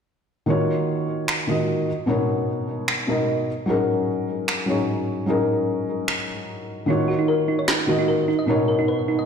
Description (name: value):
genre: future bass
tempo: 150 BPM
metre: 4/4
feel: half-time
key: unclear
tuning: A4 = 442 Hz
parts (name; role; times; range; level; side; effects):
- felt-muted upright piano; accompaniment; 0.5-9.3 s; B2 to D#5; -21 LUFS; left 1 dB; digital delay
- electronic finger snaps and snare drum; drums; 1.3-7.8 s; none; -25 LUFS; right 1 dB; none
- thumb-piano-like synth pluck; arpeggios; 6.9-9.2 s; D#4 to D#5; -22 LUFS; right 1 dB; chorus, digital delay
room: moderate lush hall reverb, RT60 1.8 s, small room ambience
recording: played on a big sound system in a bare room, large studio reverb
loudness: -20 LUFS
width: side -6 dB against mid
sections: 0.5-9.3 A section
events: none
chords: 0.5 D#m9; 1.9 Bmaj7; 3.5 F#69; 6.9 D#m9; 8.3 Bmaj7